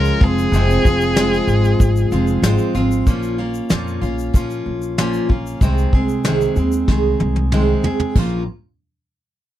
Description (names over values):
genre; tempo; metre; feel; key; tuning
acoustic pop; 94 BPM; 4/4; straight; Bb minor; A4 = 440 Hz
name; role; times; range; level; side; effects
warm violin; melody; 0.0-2.4 s; Ab4 to Bb4; -21 LUFS; left 1 dB; none
picked steel-string acoustic guitar; accompaniment; 0.0-8.4 s; F2 to Ab4; -19 LUFS; right 1 dB; none
upright bass; bass; 0.0-8.5 s; F1 to Bb2; -19 LUFS; equal; none
soft brush drum kit; drums; 0.0-8.3 s; crash cymbal, kick drum, shaker, snare drum, toms; -16 LUFS; equal; none
room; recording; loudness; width
little or no reverb; dry, close 1970s-style studio recording; -15 LUFS; side -12 dB against mid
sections
0.0-3.1 A section; 3.1-8.2 B section; 8.2-9.6 C section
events
drum fill 6.9-8.2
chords
0.2 Fm; 3.1 Bbm; 5.6 Ab/C; 8.2 Bbm